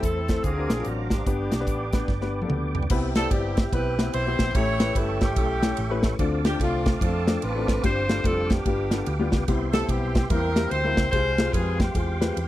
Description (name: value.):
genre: uptempo gospel.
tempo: 146 BPM.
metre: 4/4.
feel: swing 62% on 8ths.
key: C major.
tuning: A4 = 440 Hz.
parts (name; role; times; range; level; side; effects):
clear saxophone section; melody; 0.0-12.5 s; A3 to C#5; -28 LUFS; right 1 dB; none.
warm upright piano; accompaniment; 0.0-12.4 s; G2 to D5; -29 LUFS; left 4 dB; none.
mellow brass ensemble; sustained chords; 0.0-2.9 s; D3 to E4; -42 LUFS; right 4 dB; none.
tonewheel organ; sustained chords; 0.0-12.5 s; Ab3 to E6; -35 LUFS; right 4 dB; slow rotary speaker, overdrive, chorus vibrato.
hollow-body short-scale fingered electric bass; bass; 0.0-12.5 s; F1 to F2; -28 LUFS; equal; none.
modern studio drum kit; drums; 0.0-12.5 s; crash cymbal, hi-hat, kick drum, ride cymbal, snare drum, toms; -25 LUFS; equal; none.
room: little or no reverb.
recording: dry, close 1970s-style studio recording.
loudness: -22 LUFS.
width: side -14 dB against mid.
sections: 0.0-2.9 A section; 2.9-12.5 B section.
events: drum fill 2.1-2.9.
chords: 0.4 D7alt; 1.3 G; 2.9 Cmaj7; 4.6 A7; 6.2 Dm7; 7.8 G7sus4; 8.7 G7; 9.5 Cmaj7; 10.3 C7/E; 11.1 Fmadd9/C.